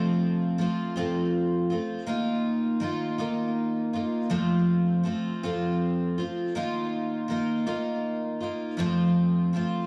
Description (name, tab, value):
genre	rock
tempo	54 BPM (dotted quarters)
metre	6/8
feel	straight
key	F mixolydian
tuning	A4 = 439 Hz
part	picked twelve-string acoustic guitar	solo	0.0-9.9 s	F2 to F4	-27 LUFS	equal	tape echo
room	moderate studio reverb, RT60 0.7 s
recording	small room ambience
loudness	-27 LUFS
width	mono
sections	0.0-9.9 A section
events	none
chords	0.0 F; 2.1 Ebsus2; 4.3 F; 6.6 Ebsus2; 8.8 F